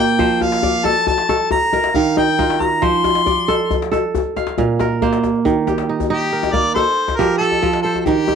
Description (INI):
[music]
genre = west african traditional, West African string and xylophone music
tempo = 92 BPM (dotted quarters)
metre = 12/8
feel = straight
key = F mixolydian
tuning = A4 = 440 Hz
[part]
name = mellow harmonica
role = melody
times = 0.0-8.4 s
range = G4 to C6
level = -18 LUFS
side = left 3 dB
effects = none
[part]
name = kora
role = arpeggios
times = 0.0-8.4 s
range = Bb2 to F5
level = -18 LUFS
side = right 6 dB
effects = none
[part]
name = djembe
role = percussion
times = 0.2-8.4 s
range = none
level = -21 LUFS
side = left 9 dB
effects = none
[sound]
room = light reverb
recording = dry, close 1970s-style studio recording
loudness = -14 LUFS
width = side -7 dB against mid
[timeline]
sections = 0.0-5.4 A section; 5.4-8.4 B section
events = harmonica solo 0.0-5.4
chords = 0.2 F; 1.5 Eb; 2.8 F; 4.1 Bb5; 5.4 Eb; 6.8 F